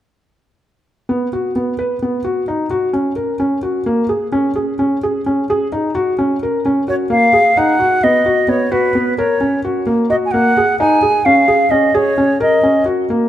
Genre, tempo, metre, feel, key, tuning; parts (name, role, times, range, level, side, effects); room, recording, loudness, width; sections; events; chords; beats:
contemporary instrumental, contemporary; 260 BPM (eighths); 7/8; straight; F# major; A4 = 440 Hz
felt-muted upright piano; arpeggios; 1.1-13.3 s; A#3 to B4; -15 LUFS; equal
silver concert flute; melody; 6.9-12.8 s; B4 to G#5; -14 LUFS; equal
moderate scoring stage reverb, RT60 2.1 s; -13 LUFS; side -12 dB against mid
1.1-7.6 A section; 7.6-13.3 B section
1.1 B5; 2.7 F#; 4.3 G#sus4; 5.9 F#; 7.6 B; 9.2 F#; 10.8 G#sus4; 12.4 F#
| 1.09 1.32 1.55 1.78 2.02 2.25 2.48 | 2.71 2.94 3.17 3.40 3.63 3.86 4.09 | 4.33 4.56 4.79 5.02 5.25 5.48 5.71 | 5.94 6.17 6.40 6.63 6.87 7.10 7.33 | 7.56 7.79 8.02 8.25 8.48 8.71 8.95 | 9.18 9.41 9.64 9.87 10.10 10.33 10.56 | 10.79 11.02 11.26 11.49 11.72 11.95 12.18 | 12.41 12.64 12.87 13.10